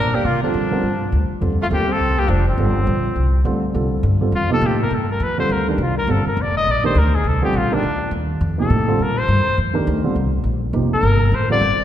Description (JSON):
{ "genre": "jazz", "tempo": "206 BPM", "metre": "4/4", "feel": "swing 61% on 8ths", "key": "C dorian", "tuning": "A4 = 440 Hz", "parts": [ { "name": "clear trumpet", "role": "melody", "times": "0.0-11.8 s", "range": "C4 to Eb5", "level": "-21 LUFS", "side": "left 2 dB", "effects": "none" }, { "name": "mellow tenor saxophone", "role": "second line", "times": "0.0-3.4 s", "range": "F3 to D4", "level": "-26 LUFS", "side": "right 4 dB", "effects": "none" }, { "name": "upright bass", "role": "bass", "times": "0.0-11.8 s", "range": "F1 to C3", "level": "-19 LUFS", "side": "equal", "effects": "none" }, { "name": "dark baby grand piano", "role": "accompaniment", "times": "0.4-11.6 s", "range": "C3 to Bb4", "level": "-22 LUFS", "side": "right 1 dB", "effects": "none" } ], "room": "wet concert hall reverb, RT60 1.9 s", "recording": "recorded in a church or concert hall", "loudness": "-16 LUFS", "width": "side -11 dB against mid", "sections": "0.0-3.7 A section; 3.7-11.8 B section", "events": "trumpet solo 3.7-11.8", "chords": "0.0 C9sus4", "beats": "| 0.24 0.53 0.82 1.11 | 1.41 1.70 1.99 2.28 | 2.58 2.87 3.16 3.45 | 3.74 4.03 4.33 4.62 | 4.91 5.20 5.49 5.78 | 6.07 6.37 6.66 6.95 | 7.24 7.53 7.82 8.11 | 8.40 8.70 8.99 9.28 | 9.57 9.86 10.15 10.45 | 10.74 11.03 11.32 11.61" }